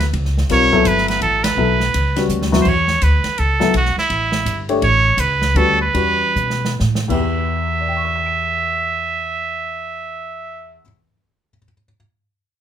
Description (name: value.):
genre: modal jazz.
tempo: 117-167 BPM.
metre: 3/4.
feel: swing 62% on 8ths.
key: E dorian.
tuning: A4 = 439 Hz.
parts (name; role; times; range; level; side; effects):
trumpet with straight mute; melody; 0.0-10.8 s; E4 to E5; -18 LUFS; right 3 dB; none.
upright bass; bass; 0.0-10.8 s; G1 to B2; -20 LUFS; equal; none.
open jazz drum kit; drums; 0.0-7.2 s; crash cymbal, hi-hat, kick drum, ride cymbal, snare drum; -25 LUFS; right 1 dB; none.
warm baby grand piano; accompaniment; 0.5-11.9 s; E2 to D7; -20 LUFS; left 5 dB; none.
room: light reverb.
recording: minimal, uncompressed stereo recording.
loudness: -15 LUFS.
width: side -9 dB against mid.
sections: 0.0-2.7 A section; 2.7-7.3 B section; 7.3-10.4 C section.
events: band accent 1.4; drum fill 2.3-2.7, 6.4-7.3; slowing down 4.8-7.3.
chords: 0.0 E9sus4; 7.0 Em.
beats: 0.14 | 0.50 0.86 1.22 | 1.58 1.94 2.30 | 2.66 3.02 3.38 | 3.74 4.10 4.46 | 4.82 5.18 5.56 | 5.95 6.36 6.80 | 7.29 7.80 8.32 | 8.83 9.35 9.86.